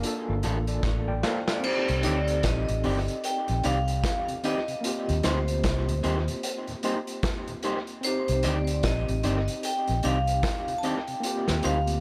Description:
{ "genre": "lovers rock reggae", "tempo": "75 BPM", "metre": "4/4", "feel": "swing 60% on 16ths", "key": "unclear", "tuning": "A4 = 440 Hz", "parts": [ { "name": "overdriven tine electric piano", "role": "accompaniment", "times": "0.0-12.0 s", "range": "Bb3 to G5", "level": "-36 LUFS", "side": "equal", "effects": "medium tremolo" }, { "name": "vintage drum kit", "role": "drums", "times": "0.0-12.0 s", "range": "crash cymbal, hi-hat, kick drum, snare drum", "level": "-34 LUFS", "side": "equal", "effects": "tape echo" }, { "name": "mellow tonewheel organ", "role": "accompaniment", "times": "0.3-11.8 s", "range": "Eb2 to F4", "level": "-40 LUFS", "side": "equal", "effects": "none" }, { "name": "vintage muted fingered electric bass", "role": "bass", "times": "0.3-12.0 s", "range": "G1 to Eb2", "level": "-30 LUFS", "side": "equal", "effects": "none" }, { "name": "electric guitar through a small old amp", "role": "stabs", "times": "0.4-11.8 s", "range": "F3 to D5", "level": "-35 LUFS", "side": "equal", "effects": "tape echo" }, { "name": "vibraphone with hard mallets", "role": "melody", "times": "1.6-12.0 s", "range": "C5 to A5", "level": "-33 LUFS", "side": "equal", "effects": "tape echo" } ], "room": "small room ambience", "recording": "none", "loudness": "-27 LUFS", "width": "mono", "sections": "0.0-1.6 A section; 1.6-12.0 B section", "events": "drum fill 0.8-1.6", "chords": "0.0 Gm9; 1.6 Cmadd9; 4.8 Eb6; 8.0 Cmadd9; 11.2 Eb6", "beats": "0.03 0.83 | 1.63 2.44 3.23 4.04 | 4.83 5.63 6.43 7.23 | 8.03 8.83 9.63 10.43 | 11.23" }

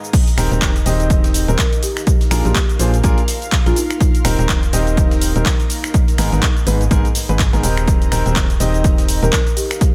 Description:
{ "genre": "piano house", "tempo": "124 BPM", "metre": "4/4", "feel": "swing 58% on 16ths", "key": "Eb major", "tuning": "A4 = 440 Hz", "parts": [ { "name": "clear concert grand piano", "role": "riff", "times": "0.0-9.3 s", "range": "Ab2 to Eb5", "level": "-24 LUFS", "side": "equal", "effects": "sidechain pumping, dub echo" }, { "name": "house drum kit", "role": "drums", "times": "0.0-9.9 s", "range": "cabasa, crash cymbal, finger snaps, handclaps, hi-hat", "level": "-25 LUFS", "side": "equal", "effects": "none" }, { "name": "granular cloud pad", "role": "texture", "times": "0.0-9.9 s", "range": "Eb4 to C6", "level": "-34 LUFS", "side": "equal", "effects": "built-in reverb, sidechain pumping" }, { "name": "breakbeat sampler-style drum kit", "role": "drums", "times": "0.1-9.9 s", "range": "hi-hat, snare drum", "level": "-36 LUFS", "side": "equal", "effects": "none" }, { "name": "electronic kick drum", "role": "drums", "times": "0.1-9.9 s", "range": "none", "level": "-18 LUFS", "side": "equal", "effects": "none" }, { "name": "organ-like FM bass", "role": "bass", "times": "0.4-9.3 s", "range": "Eb1 to Bb1", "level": "-20 LUFS", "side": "equal", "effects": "sidechain pumping" }, { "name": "marimba with soft mallets", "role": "melody", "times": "1.5-4.1, 9.2-9.9 s", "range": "Eb4 to Bb4", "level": "-28 LUFS", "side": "equal", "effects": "dub echo" } ], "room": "digital ambience", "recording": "none", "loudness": "-16 LUFS", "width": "mono", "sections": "0.1-9.9 A section", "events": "drop 0.1-9.9", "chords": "0.1 Eb6; 2.1 Bb7; 3.8 Eb6; 5.7 Abmadd9; 7.9 Eb6", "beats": "| 0.13 0.62 1.10 1.58 | 2.07 2.55 3.04 3.52 | 4.00 4.49 4.97 5.46 | 5.94 6.42 6.91 7.39 | 7.88 8.36 8.84 9.33 | 9.81" }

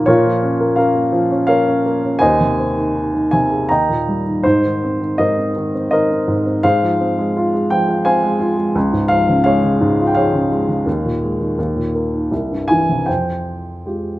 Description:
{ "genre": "classical, lyrical solo piano", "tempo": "77-88 BPM", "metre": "3/4", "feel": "rubato", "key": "Ab major", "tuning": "A4 = 440 Hz", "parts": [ { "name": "dark baby grand piano", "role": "solo", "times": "0.0-14.2 s", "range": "C2 to Bb5", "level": "-14 LUFS", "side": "equal", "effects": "none" } ], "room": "light reverb", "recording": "close, detailed microphones", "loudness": "-14 LUFS", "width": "side -16 dB against mid", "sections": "0.0-13.1 A section; 13.1-14.2 B section", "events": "none", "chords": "0.1 Bbm; 2.2 Ab/Eb; 3.7 Eb; 4.4 Abadd9; 6.6 Fm/Ab; 8.8 Db; 10.9 Ebsus4; 12.3 C; 13.1 Fmadd9", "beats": "| 0.08 0.78 1.48 | 2.21 2.95 3.70 | 4.45 5.18 5.92 | 6.64 7.36 8.06 | 8.76 9.46 10.16 | 10.87 11.58 12.32 | 13.09 13.86" }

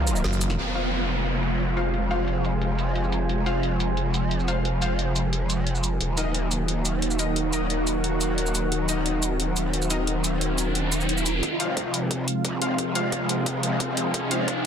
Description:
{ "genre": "dark technical drum and bass", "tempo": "177 BPM", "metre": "4/4", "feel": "straight", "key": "F phrygian", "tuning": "A4 = 440 Hz", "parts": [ { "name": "sweeping resonant pad", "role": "sustained chords", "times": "0.0-14.7 s", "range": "C3 to Gb4", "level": "-28 LUFS", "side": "equal", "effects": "chorus, sidechain pumping" }, { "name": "growl bass", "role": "bass", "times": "0.0-14.7 s", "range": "Eb1 to Db2", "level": "-28 LUFS", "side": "equal", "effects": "distortion, chorus, overdrive, sidechain pumping, high-pass filter" }, { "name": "warbly tape-like pad", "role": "texture", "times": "0.0-14.7 s", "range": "Gb3 to Bb5", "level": "-31 LUFS", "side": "equal", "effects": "chorus, built-in reverb, phaser, sidechain pumping" }, { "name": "drum and bass drum kit", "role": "drums", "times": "0.1-14.5 s", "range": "crash cymbal, hi-hat, shaker, snare drum", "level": "-30 LUFS", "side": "equal", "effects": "low-pass filter on hats, soft clipping on snare, low-pass filter on snare, low-pass filter on perc, low-pass filter on cymbals, low-pass filter on room" }, { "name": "growling FM bass", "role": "bass", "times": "0.2-0.6 s", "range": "Gb1", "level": "-24 LUFS", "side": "equal", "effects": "none" }, { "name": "downlifter and riser", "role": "sound effects", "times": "0.6-3.3, 10.1-14.7 s", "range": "none", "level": "-31 LUFS", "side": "right 2 dB", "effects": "none" }, { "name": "orchestra-hit-like synth stab", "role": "stabs", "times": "0.8-14.7 s", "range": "Eb4 to F5", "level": "-32 LUFS", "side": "left 3 dB", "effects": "built-in reverb, ping-pong delay" }, { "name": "electronic kick drum", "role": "drums", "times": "11.4-14.5 s", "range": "none", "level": "-36 LUFS", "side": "equal", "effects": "high-pass filter on kick, high-pass filter on room" } ], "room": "moderate lush hall reverb, RT60 2.1 s", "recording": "dense, heavily limited modern master", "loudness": "-22 LUFS", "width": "side -8 dB against mid", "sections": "0.6-11.4 A section; 11.4-14.7 B section", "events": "break 0.0-0.6; band accent 0.2; riser 10.1-11.4, 11.4-14.7; build-up 11.4-14.7; drum fill 14.1-14.7", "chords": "0.0 Ebm; 0.6 Fm; 6.0 Ebm; 11.4 Fm", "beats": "0.24 | 0.58 0.92 1.26 1.60 | 1.94 2.28 2.62 2.96 | 3.29 3.63 3.97 4.31 | 4.65 4.99 5.33 5.67 | 6.01 6.34 6.68 7.02 | 7.36 7.70 8.04 8.38 | 8.72 9.06 9.40 9.73 | 10.07 10.41 10.75 11.09 | 11.43 11.77 12.11 12.45 | 12.79 13.12 13.46 13.80 | 14.14 14.48" }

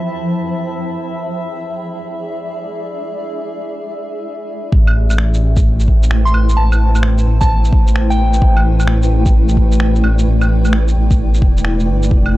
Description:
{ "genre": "future garage", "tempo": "130 BPM", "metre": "4/4", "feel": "swing 65% on 16ths", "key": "A minor", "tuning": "A4 = 440 Hz", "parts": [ { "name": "granular cloud pad", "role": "sustained chords", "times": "0.0-12.4 s", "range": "F3 to B5", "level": "-21 LUFS", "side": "equal", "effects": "built-in reverb, vintage 12-bit sampler grit, sidechain pumping" }, { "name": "drifting glass-harmonics texture", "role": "texture", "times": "0.0-4.3 s", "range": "E4 to E5", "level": "-30 LUFS", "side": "equal", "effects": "chorus, built-in reverb" }, { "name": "dark detuned saw bass", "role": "bass", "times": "4.7-12.4 s", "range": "E1 to A1", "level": "-13 LUFS", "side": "equal", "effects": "sidechain pumping" }, { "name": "electronic kick drum", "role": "drums", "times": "4.7-12.2 s", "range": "none", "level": "-13 LUFS", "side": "equal", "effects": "studio ambience" }, { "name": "electronic claves, shaker and finger snaps", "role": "drums", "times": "4.9-12.3 s", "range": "none", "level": "-24 LUFS", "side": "right 1 dB", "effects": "studio ambience" }, { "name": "soft synth bell", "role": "melody", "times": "6.3-8.6 s", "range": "G5 to C6", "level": "-22 LUFS", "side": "equal", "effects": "chorus, tape echo" } ], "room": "digital ambience", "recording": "dry, gritty hardware recording, transformer saturation", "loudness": "-12 LUFS", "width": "side -17 dB against mid", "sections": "0.0-4.7 A section; 4.7-12.4 B section", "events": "none", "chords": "0.0 Fmaj9#11; 1.0 E7; 4.7 Am9", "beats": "0.11 0.57 | 1.03 1.50 1.96 2.42 | 2.88 3.34 3.80 4.26 | 4.73 5.19 5.65 6.11 | 6.57 7.03 7.50 7.96 | 8.42 8.88 9.34 9.80 | 10.27 10.73 11.19 11.65 | 12.11" }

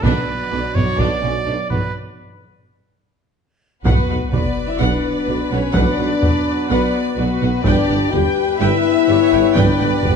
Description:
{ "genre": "cinematic, epic orchestral film score", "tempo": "126 BPM", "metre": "4/4", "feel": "straight", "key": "B minor from 3.8 s", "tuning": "A4 = 440 Hz", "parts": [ { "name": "rich symphonic violin section", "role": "melody", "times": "0.0-10.2 s", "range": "B4 to G5", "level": "-26 LUFS", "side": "left 3 dB", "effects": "none" }, { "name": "clear symphonic violin section", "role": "second line", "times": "0.0-10.2 s", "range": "B3 to D5", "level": "-27 LUFS", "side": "left 2 dB", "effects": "none" }, { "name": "warm symphonic viola section", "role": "accompaniment", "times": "0.0-10.1 s", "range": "B3 to G5", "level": "-27 LUFS", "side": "right 1 dB", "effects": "none" }, { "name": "clear trombone section", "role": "sustained chords", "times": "0.0-10.2 s", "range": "B2 to B3", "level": "-28 LUFS", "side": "right 5 dB", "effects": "none" }, { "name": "dark French horn section", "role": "sustained chords", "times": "0.0-10.1 s", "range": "B3 to G4", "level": "-19 LUFS", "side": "left 7 dB", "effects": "none" }, { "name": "bright trumpet", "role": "stabs", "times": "0.0-10.2 s", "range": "B4 to D5", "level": "-28 LUFS", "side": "right 4 dB", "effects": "none" }, { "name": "clear symphonic cello section", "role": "bass", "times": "0.0-10.1 s", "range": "G2 to B2", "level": "-26 LUFS", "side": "right 4 dB", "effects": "none" }, { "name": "clear symphonic double bass section", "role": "bass", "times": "0.0-10.1 s", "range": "G1 to B1", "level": "-25 LUFS", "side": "right 4 dB", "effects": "none" }, { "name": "taiko ensemble", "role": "drums", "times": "0.0-10.2 s", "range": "none", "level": "-20 LUFS", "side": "equal", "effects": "none" }, { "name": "mellow tuba", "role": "bass", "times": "0.1-10.1 s", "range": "G1 to B1", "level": "-26 LUFS", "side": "right 5 dB", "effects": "none" }, { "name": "sub drop", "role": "sound effects", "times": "4.0-5.8 s", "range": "none", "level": "-28 LUFS", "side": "equal", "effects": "none" } ], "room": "wet recital hall reverb, RT60 1.4 s", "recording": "dark, warm production, nothing above 10.6 kHz", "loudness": "-15 LUFS", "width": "side -6 dB against mid", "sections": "0.0-3.8 A section; 3.8-10.2 B section", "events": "break 1.9-3.8; drum fill 3.1-3.8; impact 3.8-5.8", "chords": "0.0 Bm; 7.7 G", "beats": "| 0.04 0.51 0.99 1.47 | 1.94 2.42 2.89 3.37 | 3.85 4.32 4.80 5.28 | 5.75 6.23 6.70 7.18 | 7.66 8.13 8.61 9.08 | 9.56 10.04" }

